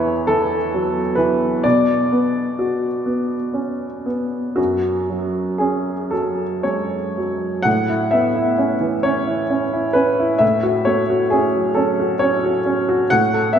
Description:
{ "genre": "neoclassical minimalist piano", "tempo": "38-46 BPM (dotted quarters)", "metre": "6/8", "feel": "rubato", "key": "A major", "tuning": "A4 = 439 Hz", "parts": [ { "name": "clear upright piano", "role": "solo", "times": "0.0-13.6 s", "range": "E2 to F#5", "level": "-16 LUFS", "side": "equal", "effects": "none" } ], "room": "wet church reverb, RT60 3.3 s", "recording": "recorded in a church or concert hall", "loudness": "-17 LUFS", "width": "side -8 dB against mid", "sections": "0.0-7.7 A section; 7.7-13.6 B section", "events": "none", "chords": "0.0 Esus4; 1.6 Bm; 4.6 F#5; 7.7 Aadd9; 10.4 F#m/A", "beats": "0.29 | 1.64 3.06 | 4.57 6.13 | 7.65 9.06 | 10.41 11.77 | 13.12" }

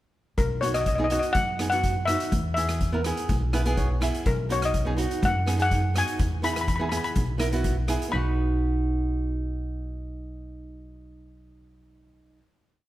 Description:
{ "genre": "calypso", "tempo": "124 BPM", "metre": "4/4", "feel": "straight", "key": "B major", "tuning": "A4 = 440 Hz", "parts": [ { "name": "steel pan", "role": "melody", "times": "0.4-12.4 s", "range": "A#4 to B5", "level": "-27 LUFS", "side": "left 3 dB", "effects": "none" }, { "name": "upright bass", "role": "bass", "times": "0.4-12.4 s", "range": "B1 to F#2", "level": "-28 LUFS", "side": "equal", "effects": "none" }, { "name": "street-band drum kit", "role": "drums", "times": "0.4-8.1 s", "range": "hi-hat, kick drum, rim click", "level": "-30 LUFS", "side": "left 1 dB", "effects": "none" }, { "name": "flamenco guitar", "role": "accompaniment", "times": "0.6-12.4 s", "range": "B3 to E5", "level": "-30 LUFS", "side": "right 3 dB", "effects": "none" } ], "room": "light reverb", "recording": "none", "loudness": "-23 LUFS", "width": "side -15 dB against mid", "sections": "0.4-8.1 verse; 8.1-12.0 final chord", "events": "nylon-string guitar fill 3.3-4.3", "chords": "0.4 B; 2.3 E; 4.3 B; 6.2 E; 8.1 B", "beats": "| 0.38 0.86 1.35 1.83 | 2.32 2.80 3.29 3.77 | 4.26 4.74 5.22 5.71 | 6.19 6.68 7.16 7.65 | 8.13 8.62 9.11 9.59 | 10.08 10.56 11.05 11.54" }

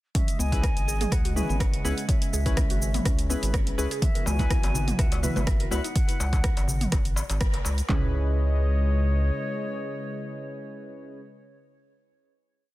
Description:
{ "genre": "afro house", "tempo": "124 BPM", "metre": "4/4", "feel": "swing 54% on 16ths", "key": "C# minor", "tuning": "A4 = 440 Hz", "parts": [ { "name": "warm analog pad", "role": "sustained chords", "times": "0.1-11.2 s", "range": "C#3 to D#5", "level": "-35 LUFS", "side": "equal", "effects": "chorus, sidechain pumping" }, { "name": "mallet-like synth pluck", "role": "arpeggios", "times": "0.1-8.1 s", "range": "B3 to E5", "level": "-37 LUFS", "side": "right 1 dB", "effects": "chorus, sidechain pumping, digital delay" }, { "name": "deep house drum kit", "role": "drums", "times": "0.1-8.0 s", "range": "handclaps, kick drum, toms", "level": "-25 LUFS", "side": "equal", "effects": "overdrive" }, { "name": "deep house drum kit", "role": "drums", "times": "0.1-7.9 s", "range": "hi-hat, rim click, shaker, toms", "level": "-32 LUFS", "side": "right 1 dB", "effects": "overdrive" }, { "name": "silver concert flute", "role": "melody", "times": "0.2-11.2 s", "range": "C#5 to G#5", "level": "-37 LUFS", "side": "left 1 dB", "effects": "digital delay" }, { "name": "round analog bass", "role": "bass", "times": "0.4-9.3 s", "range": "G#1 to C#2", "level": "-26 LUFS", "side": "equal", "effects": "sidechain pumping" }, { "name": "warm analog keys", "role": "stabs", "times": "0.5-11.2 s", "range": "B3 to B4", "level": "-35 LUFS", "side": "left 2 dB", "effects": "chorus, sidechain pumping, digital delay" }, { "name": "congas", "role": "percussion", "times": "4.0-5.8 s", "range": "none", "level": "-34 LUFS", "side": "right 3 dB", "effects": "none" }, { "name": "darbuka", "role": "percussion", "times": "4.3-7.8 s", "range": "none", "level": "-34 LUFS", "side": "left 3 dB", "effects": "none" } ], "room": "little or no reverb", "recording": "dense, heavily limited modern master", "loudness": "-23 LUFS", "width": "side -17 dB against mid", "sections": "0.2-7.9 drop; 7.9-11.8 final chord", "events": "drop 0.2-7.9; band accent 7.4", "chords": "0.2 C#m7; 4.0 Esus2; 7.9 C#m7", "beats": "| 0.15 0.64 1.12 1.60 | 2.09 2.57 3.05 3.54 | 4.02 4.51 4.99 5.47 | 5.96 6.44 6.92 7.41 | 7.89 8.38 8.86 9.35 | 9.83 10.31 10.80" }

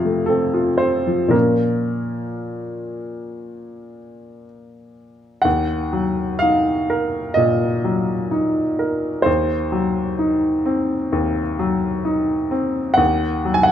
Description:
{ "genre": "classical, romantic nocturne for solo piano", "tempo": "55-65 BPM", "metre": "4/4", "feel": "rubato", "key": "unclear", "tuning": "A4 = 442 Hz", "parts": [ { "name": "clear upright piano", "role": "solo", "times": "0.0-13.7 s", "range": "Eb2 to Ab5", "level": "-17 LUFS", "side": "equal", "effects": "none" } ], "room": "moderate recital hall reverb, RT60 1.4 s", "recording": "close, detailed microphones", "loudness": "-17 LUFS", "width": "side -10 dB against mid", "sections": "0.0-5.4 A section; 5.4-13.7 B section", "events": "none", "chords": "0.0 F; 1.3 Bbm; 5.4 Ebm; 9.3 Cdim/Eb; 13.0 Ebm", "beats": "0.29 | 1.33 2.41 3.45 4.46 | 5.45 6.42 7.38 8.32 | 9.27 10.20 11.13 12.07 | 12.99" }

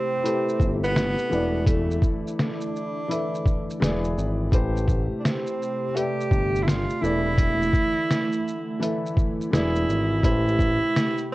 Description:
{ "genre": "lo-fi hip hop", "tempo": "84 BPM", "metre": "4/4", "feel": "swing 65% on 16ths", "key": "A minor", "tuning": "A4 = 440 Hz", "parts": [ { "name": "breathy tenor saxophone", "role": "melody", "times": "0.0-11.3 s", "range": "A3 to G4", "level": "-26 LUFS", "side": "right 2 dB", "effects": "none" }, { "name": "felt-muted upright piano", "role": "accompaniment", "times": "0.0-11.3 s", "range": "E3 to E5", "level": "-29 LUFS", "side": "left 2 dB", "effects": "cassette tape" }, { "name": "warbly tape-like pad", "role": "sustained chords", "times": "0.0-11.3 s", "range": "C3 to G4", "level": "-32 LUFS", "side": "right 1 dB", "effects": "chorus, built-in reverb" }, { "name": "trip hop sampler-style drum kit", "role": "drums", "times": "0.3-11.3 s", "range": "hi-hat, kick drum, shaker, snare drum", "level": "-24 LUFS", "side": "equal", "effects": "none" }, { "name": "smooth synth bass", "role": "bass", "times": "0.6-10.8 s", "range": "E1 to A1", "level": "-26 LUFS", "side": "equal", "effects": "none" } ], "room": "light reverb", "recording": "worn, warbling old tape, cassette tape, warbly pitch drift", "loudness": "-21 LUFS", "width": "side -18 dB against mid", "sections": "0.0-11.3 A section", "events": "none", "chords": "0.0 Am7; 1.3 E7sus4; 3.8 E7; 4.5 Am7; 7.0 E7sus4; 9.5 E7; 10.2 Am7", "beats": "0.23 0.95 | 1.66 2.38 3.09 3.81 | 4.52 5.23 5.95 6.66 | 7.38 8.09 8.80 9.52 | 10.23 10.95" }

